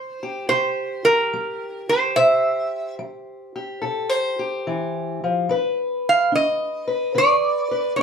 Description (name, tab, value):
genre	acoustic country blues, solo or duo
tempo	72 BPM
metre	4/4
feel	swing 68% on 8ths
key	C major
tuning	A4 = 441 Hz
part	metal-body resonator slide guitar	melody	0.0-8.0 s	Bb4 to F5	-19 LUFS	right 2 dB	none
part	fingerpicked steel-string acoustic guitar	accompaniment	0.0-8.0 s	C3 to C5	-24 LUFS	left 2 dB	none
room	moderate studio reverb, RT60 0.7 s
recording	band playing live in one room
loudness	-19 LUFS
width	side -6 dB against mid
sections	0.0-8.0 A section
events	none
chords	0.0 C5; 5.5 G